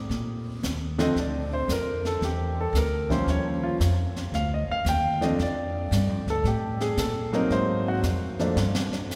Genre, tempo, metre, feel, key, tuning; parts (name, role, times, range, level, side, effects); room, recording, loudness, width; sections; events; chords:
jazz piano trio; 113 BPM; 4/4; swing 67% on 8ths; Bb major; A4 = 440 Hz
upright bass; bass; 0.0-8.9 s; D2 to Bb2; -30 LUFS; equal
jazz brush drum kit; drums; 0.1-9.2 s; brushed snare drum, hi-hat, kick drum, snare drum; -37 LUFS; equal
warm concert grand piano; melody; 1.0-8.6 s; D3 to G5; -29 LUFS; equal
wet cathedral reverb, RT60 5.2 s; recorded in a church or concert hall; -26 LUFS; mono
0.1-9.2 A section
grand piano solo 0.1-9.2
0.1 Bb; 2.2 Em7b5; 3.3 Eb9; 4.3 Dm; 6.5 N.C.; 7.5 Ab9; 8.6 N.C.